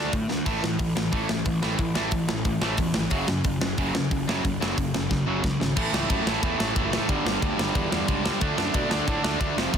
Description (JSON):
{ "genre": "punk rock", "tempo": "181 BPM", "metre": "4/4", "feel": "straight", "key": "A major", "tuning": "A4 = 441 Hz", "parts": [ { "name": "crunchy overdriven guitar", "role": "riff", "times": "0.0-9.8 s", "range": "F2 to D4", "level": "-28 LUFS", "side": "right 10 dB", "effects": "none" }, { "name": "overdriven electric guitar", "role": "riff", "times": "0.0-9.8 s", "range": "F2 to D4", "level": "-29 LUFS", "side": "left 10 dB", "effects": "none" }, { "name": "fuzz picked electric bass", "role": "bass", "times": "0.0-9.8 s", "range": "F1 to B2", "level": "-32 LUFS", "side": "left 1 dB", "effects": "overdrive" }, { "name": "tight metal drum kit", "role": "drums", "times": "0.1-9.8 s", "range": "crash cymbal, hi-hat, kick drum, ride cymbal, snare drum, splash cymbal", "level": "-27 LUFS", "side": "equal", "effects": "soft clipping on kick" } ], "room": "studio reverb", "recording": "dense, heavily limited modern master", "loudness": "-22 LUFS", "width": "side -7 dB against mid", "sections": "0.0-5.8 A section; 5.8-9.8 B section", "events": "drum fill 0.3, 5.1-5.8", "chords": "0.5 A5; 3.1 F#5; 5.8 A5; 7.1 G5; 8.4 D5", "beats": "0.13 | 0.47 0.80 1.13 1.46 | 1.79 2.12 2.46 2.79 | 3.12 3.45 3.78 4.11 | 4.45 4.78 5.11 5.44 | 5.77 6.10 6.43 6.76 | 7.09 7.42 7.75 8.08 | 8.41 8.74 9.07 9.40 | 9.73" }